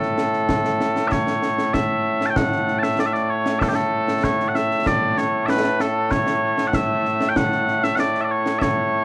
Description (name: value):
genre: scottish traditional, Scottish pipe music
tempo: 96 BPM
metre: 4/4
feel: straight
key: A major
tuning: A4 = 441 Hz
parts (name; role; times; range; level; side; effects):
- mellow small bagpipes; melody; 0.0-9.0 s; A2 to A5; -22 LUFS; equal; none
- concert snare drum and concert bass drum; drums; 0.0-8.8 s; none; -27 LUFS; equal; none
room: little or no reverb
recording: worn, warbling old tape, cassette tape, warbly pitch drift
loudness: -21 LUFS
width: mono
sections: 0.0-1.1 A section; 1.1-9.0 B section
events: none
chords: none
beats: 0.49 | 1.11 1.74 2.37 2.99 | 3.62 4.24 4.87 5.49 | 6.12 6.74 7.37 7.99 | 8.62